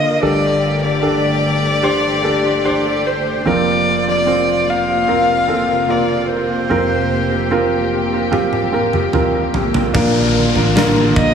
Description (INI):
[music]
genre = pop ballad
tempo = 74 BPM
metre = 4/4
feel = straight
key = unclear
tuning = A4 = 442 Hz
[part]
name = dark violin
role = melody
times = 0.0-11.3 s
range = C5 to F5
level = -18 LUFS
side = left 2 dB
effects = dub echo
[part]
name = warm concert grand piano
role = accompaniment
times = 0.0-11.3 s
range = F1 to C5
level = -17 LUFS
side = right 2 dB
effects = dub echo
[part]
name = warm studio string section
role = sustained chords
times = 0.0-11.3 s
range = C3 to G4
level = -22 LUFS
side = left 3 dB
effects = none
[part]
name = huge arena drum kit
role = drums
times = 8.3-11.3 s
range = crash cymbal, kick drum, snare drum, toms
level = -19 LUFS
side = equal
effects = none
[part]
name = picked steel-string acoustic guitar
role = arpeggios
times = 9.9-11.3 s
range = Bb2 to Bb4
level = -20 LUFS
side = left 5 dB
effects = dub echo
[part]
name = vintage muted fingered electric bass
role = bass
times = 9.9-11.3 s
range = A1 to Bb1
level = -18 LUFS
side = equal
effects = none
[part]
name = downlifter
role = sound effects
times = 9.9-11.3 s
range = none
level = -22 LUFS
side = left 3 dB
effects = none
[sound]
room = moderate echo chamber reverb, RT60 2.2 s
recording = echo-heavy mix, studio reverb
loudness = -13 LUFS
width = side -7 dB against mid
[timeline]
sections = 0.0-9.9 A section; 9.9-11.3 B section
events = drum fill 8.3-9.9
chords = 0.2 Gsus2; 3.5 Fsus4; 9.9 Bb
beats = | 0.22 1.03 1.84 2.65 | 3.46 4.27 5.08 5.89 | 6.70 7.51 8.32 9.13 | 9.95 10.76